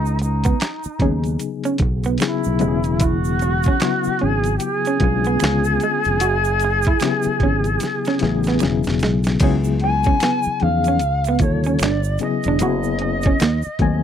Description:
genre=R&B, neo-soul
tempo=75 BPM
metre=4/4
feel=swing 60% on 16ths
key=unclear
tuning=A4 = 440 Hz
part: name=bright reedy long shakuhachi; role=melody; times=0.0-14.0 s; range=D#4 to G#5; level=-22 LUFS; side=equal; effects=slapback echo
part: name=fingered electric bass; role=bass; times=0.0-14.0 s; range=E1 to E2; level=-21 LUFS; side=right 1 dB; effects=none
part: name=tube shaker and finger snaps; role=percussion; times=0.1-13.8 s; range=none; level=-34 LUFS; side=right 22 dB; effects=none
part: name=electric guitar through a small old amp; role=second line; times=0.2-13.9 s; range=G#3 to F#4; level=-23 LUFS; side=right 6 dB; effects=harmonic tremolo
part: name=boom bap sampler-style drum kit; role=drums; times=0.2-14.0 s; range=crash cymbal, handclaps, hi-hat, kick drum, snare drum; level=-21 LUFS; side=equal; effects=none
part: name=reed electric piano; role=accompaniment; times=1.0-14.0 s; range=C3 to G#5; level=-22 LUFS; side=left 8 dB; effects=overdrive, fast tremolo
room=little or no reverb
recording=dry, close 1970s-style studio recording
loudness=-16 LUFS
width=side -9 dB against mid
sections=0.0-9.4 A section; 9.4-14.0 B section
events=drum fill 7.8-9.4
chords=0.0 C#m9; 2.6 E69; 5.4 C#7b9; 6.2 F#m9; 8.6 E; 9.4 C#m11; 11.0 C#; 11.8 G5; 12.6 F#sus2; 13.4 D#5

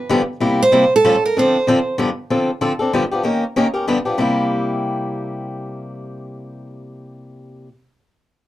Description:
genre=jazz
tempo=192 BPM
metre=3/4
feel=swing 59% on 8ths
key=C mixolydian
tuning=A4 = 439 Hz
part: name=picked steel-string acoustic guitar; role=melody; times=0.0-2.0 s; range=A4 to C5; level=-15 LUFS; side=right 2 dB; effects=none
part: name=picked swing-style acoustic guitar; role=accompaniment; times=0.1-7.7 s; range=G2 to Bb4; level=-19 LUFS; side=left 1 dB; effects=none
room=moderate club ambience, RT60 0.5 s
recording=dark, warm production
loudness=-15 LUFS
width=side -14 dB against mid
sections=0.0-2.3 A section; 2.3-4.2 B section; 4.2-6.0 C section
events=none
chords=0.4 C7; 1.0 Aaug7; 1.4 Dm7; 2.0 G7; 2.3 Dm7; 2.9 G7; 3.2 Eb7; 3.9 G7; 4.2 C7

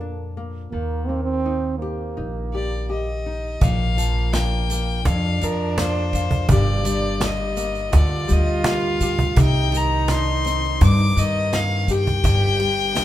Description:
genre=acoustic folk duo or small band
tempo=83 BPM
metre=4/4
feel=straight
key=Bb major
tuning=A4 = 442 Hz
part: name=warm French horn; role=second line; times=0.0-13.0 s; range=Bb3 to G4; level=-28 LUFS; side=right 4 dB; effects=none
part: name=nylon-string guitar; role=accompaniment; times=0.0-13.0 s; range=F2 to A4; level=-27 LUFS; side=left 3 dB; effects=none
part: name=upright bass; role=bass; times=0.0-13.0 s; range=G1 to G2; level=-22 LUFS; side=equal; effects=none
part: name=clear fiddle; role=melody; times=2.5-13.0 s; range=Bb4 to D6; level=-25 LUFS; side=left 3 dB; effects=none
part: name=unplugged drum kit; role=drums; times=3.6-13.0 s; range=kick drum, ride cymbal, snare drum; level=-27 LUFS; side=equal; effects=none
part: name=cajon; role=percussion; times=3.6-13.0 s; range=none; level=-23 LUFS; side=right 1 dB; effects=none
part: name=egg shaker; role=percussion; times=3.6-13.0 s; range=none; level=-35 LUFS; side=right 4 dB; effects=none
room=wet large studio reverb, RT60 1.5 s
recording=minimal, uncompressed stereo recording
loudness=-18 LUFS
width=side -13 dB against mid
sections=0.0-3.6 A section; 3.6-13.0 B section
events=French horn solo 0.0-3.6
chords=0.0 Bbmaj7; 0.7 Eb; 3.6 Bb; 6.5 Gm; 9.4 Cmadd9; 12.2 G5

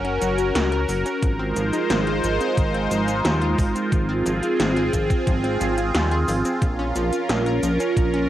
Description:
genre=synthwave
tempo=89 BPM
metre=4/4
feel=straight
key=Ab mixolydian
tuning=A4 = 441 Hz
part: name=phased analog pad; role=sustained chords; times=0.0-8.3 s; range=Ab3 to C5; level=-22 LUFS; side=right 1 dB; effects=phaser, chorus, sidechain pumping, cassette tape
part: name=analog pluck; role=arpeggios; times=0.0-8.3 s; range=F3 to Bb4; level=-29 LUFS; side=left 2 dB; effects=chorus, cassette tape, analog delay
part: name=chorused synth bass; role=bass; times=0.0-8.3 s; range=Gb1 to Eb2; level=-25 LUFS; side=equal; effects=sidechain pumping
part: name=80s electronic pad drums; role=drums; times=0.0-8.3 s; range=hi-hat, shaker, snare drum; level=-26 LUFS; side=equal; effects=overdrive, cassette tape
part: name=electronic kick drum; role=drums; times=1.2-8.1 s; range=none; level=-21 LUFS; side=equal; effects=cassette tape
room=light reverb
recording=home recording on cassette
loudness=-19 LUFS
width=side -12 dB against mid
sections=0.0-8.3 A section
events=none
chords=0.0 Gb; 1.2 Ab6; 3.9 Fm/Ab; 6.6 Bbm

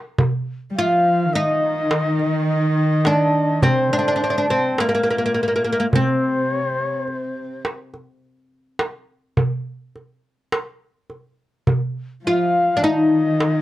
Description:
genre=Arabic maqam ensemble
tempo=104 BPM (eighths)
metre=10/8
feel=straight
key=unclear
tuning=A4 = 440 Hz
part: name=darbuka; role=percussion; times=0.2-13.6 s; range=none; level=-20 LUFS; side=right 1 dB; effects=none
part: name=warm studio cello section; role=second line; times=0.7-13.6 s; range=Bb2 to G3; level=-23 LUFS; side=right 1 dB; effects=none
part: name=oud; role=melody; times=0.8-13.6 s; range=Bb3 to F4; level=-19 LUFS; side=left 1 dB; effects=none
part: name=reedy shakuhachi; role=second line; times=0.8-13.6 s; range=Bb4 to F5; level=-25 LUFS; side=left 2 dB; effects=none
room=light reverb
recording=worn, warbling old tape, cassette tape, warbly pitch drift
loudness=-18 LUFS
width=side -15 dB against mid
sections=0.2-13.6 A section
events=drum fill 0.0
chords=none

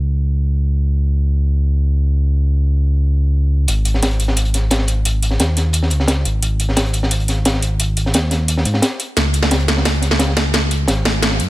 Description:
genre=liquid drum and bass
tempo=175 BPM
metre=4/4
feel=straight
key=unclear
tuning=A4 = 444 Hz
part: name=smooth synth bass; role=bass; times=0.0-11.5 s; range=G#1 to G#2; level=-16 LUFS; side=equal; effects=tube saturation
part: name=crunchy breakbeat drum kit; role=drums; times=3.7-11.5 s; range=hi-hat, snare drum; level=-20 LUFS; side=equal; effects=high-pass filter on hats, high-pass filter on snare, high-pass filter on room
part: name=drum and bass drum kit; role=drums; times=3.7-11.5 s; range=hi-hat, snare drum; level=-18 LUFS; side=equal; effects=none
room=little or no reverb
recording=none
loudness=-14 LUFS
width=side -17 dB against mid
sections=0.0-3.7 A section; 3.7-11.5 B section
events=build-up 3.7-11.5; drum fill 9.2-11.5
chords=none

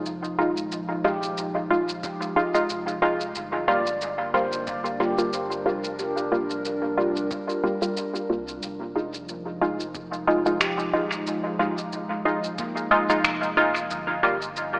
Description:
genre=ambient dub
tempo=91 BPM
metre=4/4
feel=swing 56% on 16ths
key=F dorian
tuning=A4 = 441 Hz
part: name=warbly tape-like pad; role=sustained chords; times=0.0-14.8 s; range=F3 to F5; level=-32 LUFS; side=equal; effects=chorus, built-in reverb
part: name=filtered dub chord stab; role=stabs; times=0.0-14.4 s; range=G3 to F4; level=-24 LUFS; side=equal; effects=chorus, dub echo
part: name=soft dub sub bass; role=bass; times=0.0-14.8 s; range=Eb1 to C2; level=-46 LUFS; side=equal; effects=none
part: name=electronic shaker and finger snaps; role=drums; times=0.1-14.7 s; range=none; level=-29 LUFS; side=equal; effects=overdrive, dub echo
part: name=handpan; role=arpeggios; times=1.0-14.6 s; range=Bb3 to D5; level=-32 LUFS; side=equal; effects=tape echo
part: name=electronic kick drum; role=drums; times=2.0-12.7 s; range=none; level=-44 LUFS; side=equal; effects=none
room=moderate lush hall reverb, RT60 2.0 s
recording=AM radio sound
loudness=-23 LUFS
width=side -30 dB against mid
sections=0.0-14.8 A section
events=none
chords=0.0 Fm7; 3.4 Gm7; 8.6 Fm7; 13.9 Gm7

